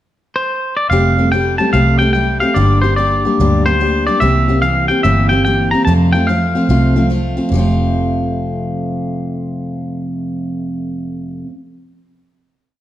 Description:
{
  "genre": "honky-tonk and classic country",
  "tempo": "146 BPM",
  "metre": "4/4",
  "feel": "swing 65% on 8ths",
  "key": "F major",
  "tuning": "A4 = 439 Hz",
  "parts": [
    { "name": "twangy electric guitar", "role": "melody", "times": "0.4-7.1 s", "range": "C5 to Bb5", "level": "-16 LUFS", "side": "equal", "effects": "none" },
    { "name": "picked steel-string acoustic guitar", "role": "accompaniment", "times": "0.9-11.5 s", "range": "F2 to G4", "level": "-16 LUFS", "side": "left 1 dB", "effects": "none" },
    { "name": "vintage muted fingered electric bass", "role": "bass", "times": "0.9-11.4 s", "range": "F1 to F2", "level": "-16 LUFS", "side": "right 1 dB", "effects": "none" }
  ],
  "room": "moderate recital hall reverb, RT60 1.3 s",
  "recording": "dark, warm production",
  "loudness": "-13 LUFS",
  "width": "side -13 dB against mid",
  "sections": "0.0-0.9 pickup bar; 0.9-7.5 A section; 7.5-10.8 final chord",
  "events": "none",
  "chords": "0.0 N.C.; 0.9 Fadd9; 2.6 Gm; 4.2 C7; 5.9 F"
}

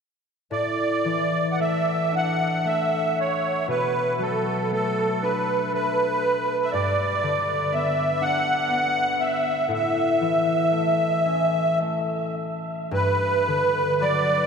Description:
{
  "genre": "celtic folk, Celtic slow air",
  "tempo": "54-61 BPM",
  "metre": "3/4",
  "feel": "rubato",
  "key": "A mixolydian",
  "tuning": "A4 = 440 Hz",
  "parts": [
    { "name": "musette accordion", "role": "melody", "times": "0.5-14.5 s", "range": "A4 to F#5", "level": "-22 LUFS", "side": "right 1 dB", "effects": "diffuse ambient delay" },
    { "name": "concert harp", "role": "accompaniment", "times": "0.5-14.5 s", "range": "G2 to D4", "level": "-27 LUFS", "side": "left 2 dB", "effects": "none" }
  ],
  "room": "wet cathedral reverb, RT60 5.8 s",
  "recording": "dreamy mix soaked in reverb",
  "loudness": "-21 LUFS",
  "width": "side -6 dB against mid",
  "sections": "0.5-12.9 A section; 12.9-14.5 B section",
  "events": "none",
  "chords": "0.5 Asus4; 3.7 Bm7; 6.7 G; 9.7 A; 12.9 Gmaj7"
}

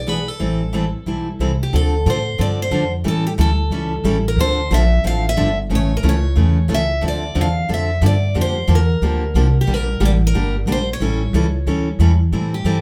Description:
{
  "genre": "acoustic string swing (jazz manouche)",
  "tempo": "181 BPM",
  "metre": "4/4",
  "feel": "swing 61% on 8ths",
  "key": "D minor",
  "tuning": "A4 = 440 Hz",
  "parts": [
    { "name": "picked steel-string acoustic guitar", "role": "melody", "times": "0.0-12.8 s", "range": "G4 to F5", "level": "-26 LUFS", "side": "equal", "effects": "none" },
    { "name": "upright bass", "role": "bass", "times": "0.0-12.8 s", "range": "G1 to A2", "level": "-20 LUFS", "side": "equal", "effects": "none" },
    { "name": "picked steel-string acoustic guitar", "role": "accompaniment", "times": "0.1-12.8 s", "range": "C#3 to A4", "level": "-24 LUFS", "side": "equal", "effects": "none" }
  ],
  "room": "wet studio reverb, RT60 0.6 s",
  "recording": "band playing live in one room",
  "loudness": "-18 LUFS",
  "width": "mono",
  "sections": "0.0-1.7 A section; 1.7-12.3 B section",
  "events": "none",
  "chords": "0.4 Am7; 1.7 Dm7; 3.0 A7; 4.4 Dm7; 5.7 A; 7.0 Dm7; 8.4 Bb6; 9.7 Gm; 11.0 A7"
}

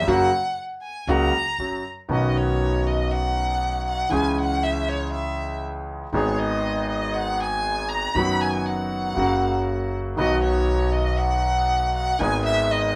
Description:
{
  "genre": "tango",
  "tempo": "119 BPM",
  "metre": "4/4",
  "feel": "rubato",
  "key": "B major",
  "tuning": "A4 = 441 Hz",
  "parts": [
    { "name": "warm violin", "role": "second line", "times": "0.0-13.0 s", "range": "C#5 to B5", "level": "-28 LUFS", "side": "equal", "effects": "none" },
    { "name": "clear concert grand piano", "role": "accompaniment", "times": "0.0-13.0 s", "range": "G#1 to G#4", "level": "-26 LUFS", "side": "equal", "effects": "none" },
    { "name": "upright bass", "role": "bass", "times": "0.1-13.0 s", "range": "F#1 to C#2", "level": "-30 LUFS", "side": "equal", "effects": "none" }
  ],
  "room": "moderate studio reverb, RT60 0.5 s",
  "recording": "band playing live in one room",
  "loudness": "-23 LUFS",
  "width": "mono",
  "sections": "0.0-2.1 A section; 2.1-13.0 A section",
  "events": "violin solo 0.0-2.1, 2.1-13.0",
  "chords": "0.1 F#; 2.1 Badd9; 4.1 C#m; 6.1 G#m; 8.2 B/F#; 9.2 F#; 10.2 B; 12.2 G#m"
}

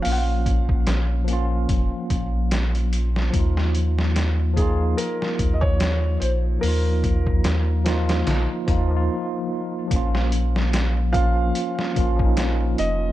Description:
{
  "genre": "trip hop",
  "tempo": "73 BPM",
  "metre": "4/4",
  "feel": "swing 56% on 16ths",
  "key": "Bb minor",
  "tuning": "A4 = 443 Hz",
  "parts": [
    { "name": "felt-muted upright piano", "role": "melody", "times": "0.0-13.1 s", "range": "Ab4 to Gb5", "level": "-29 LUFS", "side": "right 1 dB", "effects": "dub echo" },
    { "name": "barky tine electric piano", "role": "accompaniment", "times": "0.0-13.1 s", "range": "F3 to F4", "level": "-26 LUFS", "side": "equal", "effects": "medium stereo tremolo, harmonic tremolo, vintage 12-bit sampler grit, tape echo" },
    { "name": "trip hop sampler-style drum kit", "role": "drums", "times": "0.0-13.0 s", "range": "hi-hat, kick drum, snare drum", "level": "-24 LUFS", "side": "equal", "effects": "none" },
    { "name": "soft dub sub bass", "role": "bass", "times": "0.1-13.1 s", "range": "F1 to Eb2", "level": "-22 LUFS", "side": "equal", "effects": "none" }
  ],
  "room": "digital ambience",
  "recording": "dark, warm production",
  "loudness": "-19 LUFS",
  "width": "side -14 dB against mid",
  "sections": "0.0-9.9 A section; 9.9-13.1 B section",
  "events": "stop 9.1-9.9",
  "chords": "0.0 Bbm; 3.3 Ebsus2; 9.9 Bbm"
}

